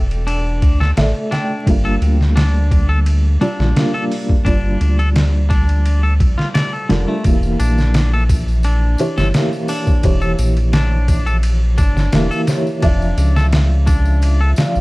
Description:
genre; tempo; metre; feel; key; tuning
trip hop; 86 BPM; 4/4; straight; unclear; A4 = 436 Hz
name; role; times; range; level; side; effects
felt-muted upright piano; accompaniment; 0.0-14.8 s; E3 to G5; -21 LUFS; equal; tremolo, low-pass filter, tape echo
round analog bass; bass; 0.0-14.8 s; E1 to D2; -15 LUFS; equal; none
trip hop sampler-style drum kit; drums; 0.1-14.8 s; hi-hat, kick drum, ride cymbal, snare drum; -18 LUFS; equal; none
twangy electric guitar; arpeggios; 0.3-14.5 s; D3 to D5; -25 LUFS; left 2 dB; tape echo
tambourine and triangle; percussion; 7.3-14.8 s; none; -38 LUFS; left 2 dB; none
room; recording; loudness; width
little or no reverb; dark, warm production, vinyl crackle; -13 LUFS; side -22 dB against mid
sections
0.0-14.8 A section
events
none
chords
0.0 Asus4; 1.7 Gm7; 7.2 Edim; 12.8 Dmadd9/F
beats
0.27 0.97 | 1.67 2.36 3.06 3.76 | 4.46 5.15 5.85 6.55 | 7.25 7.94 8.64 9.34 | 10.04 10.73 11.43 12.13 | 12.83 13.53 14.22

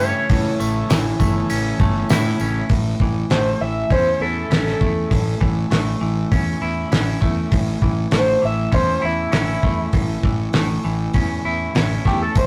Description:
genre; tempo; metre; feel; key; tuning
psychedelic rock; 100 BPM; 4/4; straight; A major; A4 = 440 Hz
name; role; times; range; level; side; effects
overdriven synth lead; melody; 0.0-12.5 s; E4 to E5; -24 LUFS; equal; chorus
combo organ; sustained chords; 0.0-2.7 s; C#3 to A4; -30 LUFS; equal; none
clean electric guitar; riff; 0.0-12.5 s; A2 to E4; -26 LUFS; equal; none
fuzz fingered electric bass; bass; 0.0-12.5 s; G1 to A2; -26 LUFS; equal; overdrive
tambourine; percussion; 0.0-2.5, 12.4-12.5 s; none; -40 LUFS; equal; none
cloth-damped thuddy drum kit; drums; 0.3-12.5 s; hi-hat, kick drum, snare drum; -23 LUFS; equal; none
room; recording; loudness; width
moderate booth ambience, RT60 0.2 s; rough rehearsal-room recording, tube saturation; -19 LUFS; mono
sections
0.0-2.7 A section; 2.7-12.5 B section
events
analog synth lead solo 2.7-12.5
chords
0.0 A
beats
| 0.30 0.90 1.50 2.10 | 2.70 3.31 3.91 4.51 | 5.11 5.71 6.32 6.92 | 7.52 8.13 8.73 9.33 | 9.94 10.54 11.15 11.75 | 12.36

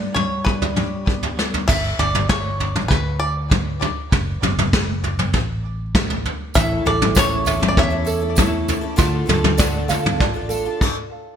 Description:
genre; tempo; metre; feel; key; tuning
indie folk with a building arrangement; 99 BPM; 4/4; straight; unclear; A4 = 440 Hz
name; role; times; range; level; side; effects
bluegrass banjo; melody; 0.0-8.7 s; B4 to E5; -25 LUFS; equal; ping-pong delay
fingerpicked steel-string acoustic guitar; accompaniment; 0.0-1.6 s; G2 to G4; -27 LUFS; left 1 dB; wide subtle chorus
soft brush drum kit; drums; 0.2-11.0 s; crash cymbal, kick drum, snare drum, toms; -19 LUFS; equal; gated reverb
fingered electric bass; bass; 1.7-10.7 s; F#1 to E2; -24 LUFS; equal; none
picked twelve-string acoustic guitar; accompaniment; 6.5-10.8 s; A2 to A4; -27 LUFS; left 5 dB; wide subtle chorus
tambourine; percussion; 6.5-10.6 s; none; -32 LUFS; right 11 dB; none
ukulele; arpeggios; 6.6-10.8 s; E4 to F5; -24 LUFS; right 4 dB; ping-pong delay
room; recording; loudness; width
moderate plate reverb, RT60 1.7 s, small room ambience; bright 1980s-style digital production; -17 LUFS; side -8 dB against mid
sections
0.0-1.7 A section; 1.7-11.4 B section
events
drum fill 1.4-1.7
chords
0.0 G; 1.7 G5; 4.1 F#m; 6.6 A; 9.0 Dm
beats
0.46 1.07 | 1.68 2.29 2.90 3.51 | 4.12 4.73 5.34 5.95 | 6.56 7.16 7.77 8.38 | 8.99 9.59 10.20 10.81

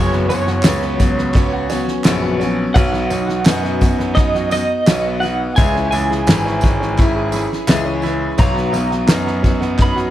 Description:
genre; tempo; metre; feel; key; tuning
indie folk with a building arrangement; 85 BPM; 4/4; straight; B major; A4 = 440 Hz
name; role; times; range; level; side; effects
electric guitar through a small old amp; melody; 0.0-10.1 s; C#5 to B5; -22 LUFS; right 2 dB; tremolo
picked twelve-string acoustic guitar; accompaniment; 0.0-10.1 s; F#2 to G#4; -22 LUFS; left 7 dB; none
bright upright piano; arpeggios; 0.0-10.1 s; F#3 to G#4; -23 LUFS; right 7 dB; none
bright grand piano; bass; 0.0-10.1 s; F#1 to F#2; -21 LUFS; equal; none
loose indie drum kit; drums; 0.1-10.1 s; kick drum, snare drum; -16 LUFS; equal; none
tambourine; percussion; 0.3-9.2 s; none; -35 LUFS; right 7 dB; none
group handclap; percussion; 0.6-10.0 s; none; -27 LUFS; right 4 dB; none
room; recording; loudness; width
little or no reverb; none; -14 LUFS; side -13 dB against mid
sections
0.0-10.1 A section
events
none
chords
0.0 F#sus4; 2.8 B; 5.6 C#m; 8.4 B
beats
0.65 1.35 2.05 | 2.75 3.46 4.16 4.87 | 5.57 6.27 6.98 7.68 | 8.38 9.09 9.79

